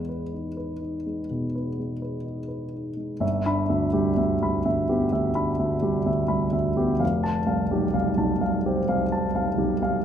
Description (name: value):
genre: classical, impressionist solo piano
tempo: 64 BPM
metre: 4/4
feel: rubato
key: E major, G major from 3.2 s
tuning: A4 = 441 Hz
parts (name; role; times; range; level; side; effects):
- warm grand piano; solo; 0.0-10.0 s; F1 to B5; -23 LUFS; equal; none
room: wet recital hall reverb, RT60 1.4 s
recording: none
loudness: -23 LUFS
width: side -9 dB against mid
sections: 0.0-3.2 A section; 3.2-10.0 B section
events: none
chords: 0.0 Emaj7; 3.2 G6; 7.0 Fadd9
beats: 0.34 1.30 2.25 | 3.22 4.20 5.15 6.08 | 7.02 7.94 8.88 9.81